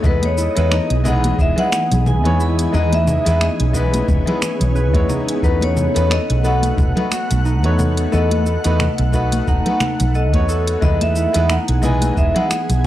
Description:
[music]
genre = sunset chillout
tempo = 89 BPM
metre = 4/4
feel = swing 56% on 16ths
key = E major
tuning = A4 = 439 Hz
[part]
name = bright grand piano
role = accompaniment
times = 0.0-12.5 s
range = E3 to D#5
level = -25 LUFS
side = moving between left 4 dB and right 3 dB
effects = auto-pan
[part]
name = shimmering ambient pad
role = sustained chords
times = 0.0-12.9 s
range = E3 to F#5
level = -25 LUFS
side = equal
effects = chorus, built-in reverb
[part]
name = concert harp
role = arpeggios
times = 0.0-12.9 s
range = D#4 to B4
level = -28 LUFS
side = right 1 dB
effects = tape echo
[part]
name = woody fretless electric bass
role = bass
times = 0.0-12.9 s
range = E1 to E2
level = -17 LUFS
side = equal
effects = tube saturation, lush chorus
[part]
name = electronic kick drum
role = drums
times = 0.0-12.3 s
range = none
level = -19 LUFS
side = equal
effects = studio reverb
[part]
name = smooth R&B drum kit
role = drums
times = 0.0-12.9 s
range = congas, finger snaps, hi-hat, shaker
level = -24 LUFS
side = left 1 dB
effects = studio reverb
[part]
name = vibraphone with medium hard mallets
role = melody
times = 0.1-12.9 s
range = B4 to B5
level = -22 LUFS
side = left 1 dB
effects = tape echo
[part]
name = congas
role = percussion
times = 0.2-12.8 s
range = none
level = -26 LUFS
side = left 1 dB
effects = none
[sound]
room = studio reverb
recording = dry, gritty hardware recording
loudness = -14 LUFS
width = side -13 dB against mid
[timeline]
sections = 0.0-12.9 A section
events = none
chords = 0.0 Emaj7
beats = | 0.04 0.71 1.39 2.06 | 2.73 3.41 4.08 4.76 | 5.43 6.11 6.78 7.45 | 8.13 8.80 9.48 10.15 | 10.82 11.50 12.17 12.85

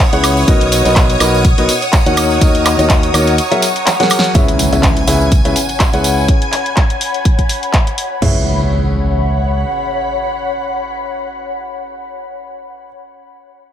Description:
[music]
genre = piano house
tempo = 124 BPM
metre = 4/4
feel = swing 55% on 16ths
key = C# dorian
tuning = A4 = 440 Hz
[part]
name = string machine, violins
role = sustained chords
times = 0.0-8.2 s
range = C#5 to G#6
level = -20 LUFS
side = right 1 dB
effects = ensemble chorus, sidechain pumping
[part]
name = ethereal airy pad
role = texture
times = 0.0-12.9 s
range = C#5 to B5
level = -22 LUFS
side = left 2 dB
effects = ensemble chorus, built-in reverb, sidechain pumping
[part]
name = warm upright piano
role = riff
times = 0.1-12.9 s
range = B2 to F#5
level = -16 LUFS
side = left 2 dB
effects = sidechain pumping, digital delay
[part]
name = modern bright fingered electric bass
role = bass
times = 0.1-9.6 s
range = B1 to D#2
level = -17 LUFS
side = equal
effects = sidechain pumping
[part]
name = house drum kit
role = drums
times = 0.1-8.1 s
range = handclaps, hi-hat, snare drum, woodblock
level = -17 LUFS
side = equal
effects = studio ambience
[part]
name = tambourine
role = percussion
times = 0.1-6.3 s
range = none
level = -25 LUFS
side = right 6 dB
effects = none
[part]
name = house drum kit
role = drums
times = 0.5-8.3 s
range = crash cymbal, kick drum, toms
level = -12 LUFS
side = equal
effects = studio ambience
[part]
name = impact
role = sound effects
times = 4.3-12.9 s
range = none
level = -23 LUFS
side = equal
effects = none
[sound]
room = light reverb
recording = none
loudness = -11 LUFS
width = side -10 dB against mid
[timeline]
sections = 0.0-4.3 A section; 4.3-8.2 B section; 8.2-12.1 C section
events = drop 0.0-4.3; drum fill 3.9-4.3; impact 4.3-6.3; filter sweep on string machine 4.3-8.2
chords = 0.5 Bmaj7; 2.2 D#m7; 3.4 F#add9; 4.3 C#m7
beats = | 0.48 0.96 1.45 1.93 | 2.41 2.90 3.38 3.87 | 4.35 4.83 5.32 5.80 | 6.29 6.77 7.25 7.74 | 8.22 8.70 9.19 9.67 | 10.16 10.64 11.12 11.61

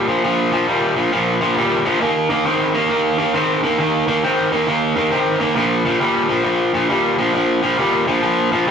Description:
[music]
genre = blues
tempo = 135 BPM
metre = 4/4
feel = swing 64% on 8ths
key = unclear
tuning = A4 = 440 Hz
[part]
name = cranked stack guitar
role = solo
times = 0.0-8.7 s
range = Bb2 to C4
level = -15 LUFS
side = equal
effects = overdrive
[sound]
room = wet stone room reverb, RT60 1.1 s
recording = rough rehearsal-room recording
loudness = -15 LUFS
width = side -7 dB against mid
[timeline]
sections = 0.0-8.7 A section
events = none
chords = 0.0 Bb5; 2.0 Eb5; 5.6 Bb5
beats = | 0.24 0.68 1.13 1.57 | 2.01 2.46 2.90 3.35 | 3.79 4.23 4.68 5.12 | 5.57 6.01 6.45 6.90 | 7.34 7.79 8.23 8.67

